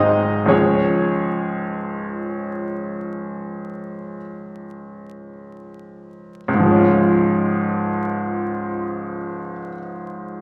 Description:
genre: classical, romantic nocturne for solo piano.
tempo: 25-37 BPM (dotted quarters).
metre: 9/8.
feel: rubato.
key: Db major.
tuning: A4 = 440 Hz.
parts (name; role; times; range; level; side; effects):
bright baby grand piano; solo; 0.0-10.4 s; Ab1 to F5; -22 LUFS; equal; none.
room: wet recital hall reverb, RT60 1.5 s.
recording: vinyl crackle.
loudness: -21 LUFS.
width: mono.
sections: 0.0-6.5 A section; 6.5-10.4 B section.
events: slowing down 0.0-6.5.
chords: 0.0 Ab7; 0.5 Db.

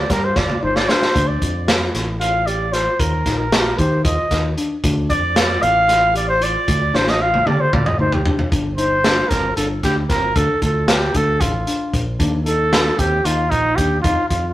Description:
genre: progressive instrumental, band music in an uneven meter.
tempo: 228 BPM (eighths).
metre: 7/8.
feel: straight.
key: D phrygian.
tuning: A4 = 440 Hz.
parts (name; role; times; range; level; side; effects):
mellow trumpet; melody; 0.0-14.5 s; Eb4 to F5; -18 LUFS; equal; none.
fingered electric bass; bass; 0.0-14.5 s; G1 to Eb3; -22 LUFS; equal; none.
mellow tine electric piano; arpeggios; 0.1-14.5 s; C4 to G4; -26 LUFS; left 2 dB; overdrive.
crunchy breakbeat drum kit; drums; 0.1-14.4 s; hi-hat, kick drum, snare drum, toms; -20 LUFS; equal; none.
room: moderate stone room reverb, RT60 1.2 s.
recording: rough rehearsal-room recording, tube saturation.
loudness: -15 LUFS.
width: side -14 dB against mid.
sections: 0.0-8.5 A section; 8.5-14.5 B section.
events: trumpet solo 0.0-8.5; drum fill 0.4-1.1, 6.9-8.5.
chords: 0.0 G5; 1.1 Dm; 3.0 Eb; 4.8 Dm; 8.5 G5; 10.4 Dm; 12.2 Eb5.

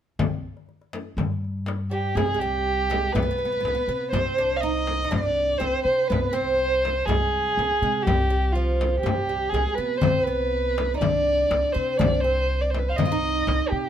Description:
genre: Arabic maqam ensemble.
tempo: 122 BPM.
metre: 4/4.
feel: straight.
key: C maqam nahawand.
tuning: A4 = 439 Hz.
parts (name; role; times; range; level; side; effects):
upright bass; bass; 0.2-13.9 s; C2 to C3; -28 LUFS; equal; none.
darbuka; percussion; 0.2-1.8, 10.0-13.9 s; none; -27 LUFS; left 6 dB; none.
frame drum; percussion; 0.2-13.6 s; none; -29 LUFS; left 3 dB; none.
dark violin; melody; 1.9-13.9 s; F4 to F5; -24 LUFS; right 1 dB; none.
oud; second line; 1.9-13.9 s; F3 to F4; -29 LUFS; right 3 dB; none.
room: light reverb.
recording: minimal, uncompressed stereo recording.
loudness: -21 LUFS.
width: side -9 dB against mid.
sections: 0.2-2.2 A section; 2.2-13.9 B section.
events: none.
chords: none.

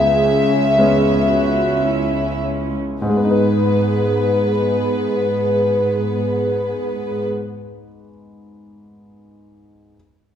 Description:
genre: cinematic, emotional film score for orchestra.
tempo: 49-60 BPM.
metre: 3/4.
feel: rubato.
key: G# minor.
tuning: A4 = 441 Hz.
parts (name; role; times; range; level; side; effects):
warm studio violin section; melody; 0.0-7.2 s; B4 to E5; -20 LUFS; left 1 dB; none.
bright concert grand piano; accompaniment; 0.0-10.0 s; C#2 to B4; -21 LUFS; left 1 dB; none.
warm studio viola section; accompaniment; 0.0-7.3 s; B3 to G#4; -22 LUFS; right 1 dB; none.
dark studio cello section; bass; 0.0-7.2 s; C#2 to G#2; -23 LUFS; right 2 dB; none.
room: wet recital hall reverb, RT60 1.5 s.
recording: minimal, uncompressed stereo recording.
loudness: -15 LUFS.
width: side -9 dB against mid.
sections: 0.0-3.0 A section; 3.0-6.5 B section.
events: slowing down 0.0-3.0.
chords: 0.0 C#m7; 3.0 G#m.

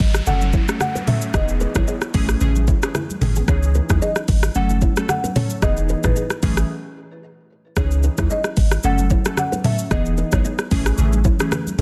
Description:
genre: afrobeats.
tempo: 112 BPM.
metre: 4/4.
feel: swing 55% on 16ths.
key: unclear.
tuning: A4 = 440 Hz.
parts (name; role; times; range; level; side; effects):
folk marimba with medium mallets; melody; 0.0-11.8 s; B4 to F#5; -30 LUFS; equal; digital delay.
punchy sub bass; bass; 0.0-11.8 s; E1 to D#2; -22 LUFS; equal; none.
afro-pop drum kit; drums; 0.0-11.8 s; hi-hat, kick drum, rim click, shaker, toms; -23 LUFS; equal; soft clipping on snare.
congas; percussion; 0.0-11.8 s; none; -32 LUFS; equal; none.
downlifter; sound effects; 0.0-3.5 s; none; -38 LUFS; equal; none.
glassy digital keys; accompaniment; 0.3-11.8 s; E3 to A4; -28 LUFS; equal; chorus, phaser.
nylon-string guitar; riff; 0.5-11.8 s; B3 to D#5; -32 LUFS; equal; digital delay.
room: digital ambience.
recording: dense, heavily limited modern master.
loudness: -19 LUFS.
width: mono.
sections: 0.0-11.8 A section.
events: break 6.7-7.8.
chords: 0.3 F#m; 1.3 Emaj7; 2.1 Amaj7; 3.5 C#madd9; 4.6 F#m; 5.6 Emaj7; 6.4 Amaj7; 7.8 C#madd9; 8.8 F#m; 9.9 Emaj7; 10.7 Amaj7.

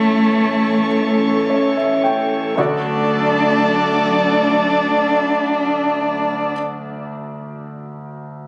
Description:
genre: pop.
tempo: free time.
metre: none.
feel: none.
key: D major.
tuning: A4 = 439 Hz.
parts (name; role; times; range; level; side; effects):
warm cello; melody; 0.0-6.5 s; A3 to D4; -20 LUFS; equal; none.
clear concert grand piano; accompaniment; 0.0-8.5 s; D2 to G5; -26 LUFS; equal; none.
airy breathy pad; sustained chords; 0.0-6.5 s; E3 to D5; -22 LUFS; equal; chorus.
room: light reverb, small room ambience.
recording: recorded on a phone in the room, club reverb, compression.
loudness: -17 LUFS.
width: mono.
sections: 0.0-2.6 A section; 2.6-7.0 B section.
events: slowing down 0.0-2.6; grand piano fill 1.0-2.6.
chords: 0.0 A; 2.6 D.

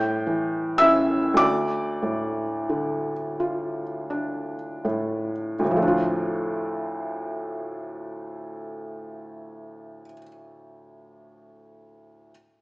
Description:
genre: classical, romantic nocturne for solo piano.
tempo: 26-37 BPM (dotted quarters).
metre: 6/8.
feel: rubato.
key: D minor.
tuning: A4 = 439 Hz.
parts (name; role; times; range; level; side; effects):
felt-muted upright piano; solo; 0.0-12.3 s; D2 to G6; -23 LUFS; equal; none.
room: moderate recital hall reverb, RT60 1.3 s.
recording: small speaker sound.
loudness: -22 LUFS.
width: side -24 dB against mid.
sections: 0.0-5.6 A section; 5.6-10.0 B section.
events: slowing down 0.0-5.6.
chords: 0.0 A7; 1.4 Dm.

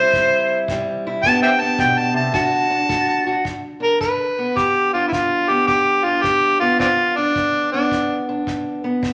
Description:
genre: acoustic country blues, solo or duo.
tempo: 108 BPM.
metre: 4/4.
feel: swing 65% on 8ths.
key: G major.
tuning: A4 = 440 Hz.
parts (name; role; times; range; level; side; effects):
overdriven harmonica; melody; 0.0-8.2 s; C4 to A5; -19 LUFS; equal; none.
fingerpicked steel-string acoustic guitar; accompaniment; 0.0-9.1 s; G2 to G4; -24 LUFS; equal; none.
kick drum; drums; 0.1-9.1 s; none; -35 LUFS; equal; none.
room: wet large studio reverb, RT60 1.1 s.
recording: none.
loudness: -18 LUFS.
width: mono.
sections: 0.0-3.5 A section; 3.5-9.1 B section.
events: harmonica solo 0.0-3.5.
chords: 0.0 C; 1.2 G; 2.3 D; 3.5 G.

